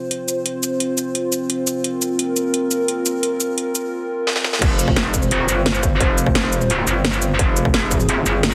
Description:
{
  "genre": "dark technical drum and bass",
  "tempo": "173 BPM",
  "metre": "4/4",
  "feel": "straight",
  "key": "F minor",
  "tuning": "A4 = 441 Hz",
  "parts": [
    { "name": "dark analog pad", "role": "sustained chords", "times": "0.0-8.5 s", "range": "C4 to C5", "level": "-25 LUFS", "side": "equal", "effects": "chorus, vintage 12-bit sampler grit, sidechain pumping" },
    { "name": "drum and bass drum kit", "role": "drums", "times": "0.1-8.5 s", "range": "crash cymbal, hi-hat, shaker, snare drum", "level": "-23 LUFS", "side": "equal", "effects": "high-pass filter on hats, high-pass filter on perc, high-pass filter on snare, high-pass filter on cymbals, high-pass filter on room" },
    { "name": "metallic wobble bass", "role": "bass", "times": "4.6-8.5 s", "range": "F1 to G1", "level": "-21 LUFS", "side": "equal", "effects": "chorus, overdrive" },
    { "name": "electronic kick drum", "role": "drums", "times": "4.6-8.0 s", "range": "none", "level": "-22 LUFS", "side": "equal", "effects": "distortion" }
  ],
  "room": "moderate lush hall reverb, RT60 1.7 s",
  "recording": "heavily compressed radio sound, multiband compression, high-pass filter",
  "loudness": "-19 LUFS",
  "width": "mono",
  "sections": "0.0-4.6 A section; 4.6-8.5 B section",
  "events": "build-up 0.0-4.6; drum fill 4.3-4.6; drop 4.6-8.5",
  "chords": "0.0 F5"
}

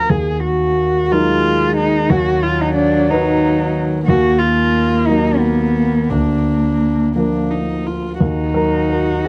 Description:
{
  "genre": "neoclassical piano and strings",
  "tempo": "59 BPM (dotted quarters)",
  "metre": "6/8",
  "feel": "uneven beats, rubato",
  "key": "Eb harmonic minor",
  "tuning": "A4 = 438 Hz",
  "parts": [
    { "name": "dark cello", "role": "second line", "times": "0.0-9.3 s", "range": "Bb3 to Bb4", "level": "-20 LUFS", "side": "equal", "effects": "none" },
    { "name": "warm concert grand piano", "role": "accompaniment", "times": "0.0-9.3 s", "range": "D2 to B4", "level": "-20 LUFS", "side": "equal", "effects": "none" },
    { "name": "warm viola", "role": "accompaniment", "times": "1.1-9.3 s", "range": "F#3 to Gb4", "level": "-23 LUFS", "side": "equal", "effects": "none" }
  ],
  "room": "light reverb",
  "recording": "dry, close 1970s-style studio recording",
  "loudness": "-16 LUFS",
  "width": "mono",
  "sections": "0.0-8.2 A section; 8.2-9.3 A section",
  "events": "none",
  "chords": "0.1 Ebm; 2.1 B/D#; 4.1 Ebm; 6.1 Bb/D; 8.2 Ebm"
}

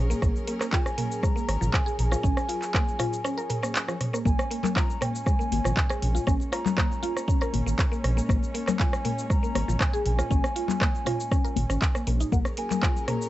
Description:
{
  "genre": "afro house",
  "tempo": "119 BPM",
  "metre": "4/4",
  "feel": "straight",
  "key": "Bb minor",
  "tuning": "A4 = 437 Hz",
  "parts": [
    { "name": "warm studio string section", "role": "sustained chords", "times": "0.0-13.3 s", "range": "Gb3 to Bb4", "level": "-38 LUFS", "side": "equal", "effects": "sidechain pumping" },
    { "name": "round analog bass", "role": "bass", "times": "0.0-12.4 s", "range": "Ab1 to Bb1", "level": "-26 LUFS", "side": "equal", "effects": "sidechain pumping" },
    { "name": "mallet-like synth pluck", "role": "arpeggios", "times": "0.1-13.2 s", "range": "F3 to Bb4", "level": "-32 LUFS", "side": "equal", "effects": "wide subtle chorus, sidechain pumping, analog delay" },
    { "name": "afro-pop drum kit", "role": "drums", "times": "0.1-13.3 s", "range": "cabasa, handclaps, hi-hat, rim click, toms", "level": "-29 LUFS", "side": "right 1 dB", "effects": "studio reverb, cassette tape" },
    { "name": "electronic kick drum", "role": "drums", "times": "0.2-12.9 s", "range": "none", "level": "-25 LUFS", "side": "equal", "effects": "studio reverb, cassette tape" },
    { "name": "mellow bass bansuri", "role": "melody", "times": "0.7-13.3 s", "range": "Gb5 to Bb5", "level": "-34 LUFS", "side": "equal", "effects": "analog delay" },
    { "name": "congas", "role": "percussion", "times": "4.3-13.2 s", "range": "none", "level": "-31 LUFS", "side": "left 9 dB", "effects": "none" }
  ],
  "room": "light reverb",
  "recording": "home recording on cassette, nothing above 8.0 kHz",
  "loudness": "-23 LUFS",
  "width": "side -15 dB against mid",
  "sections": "0.0-13.3 A section",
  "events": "break 3.2-4.3; drum fill 4.0",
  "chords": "0.0 Gbmaj7; 4.3 Bbm7; 12.3 Gbmaj7"
}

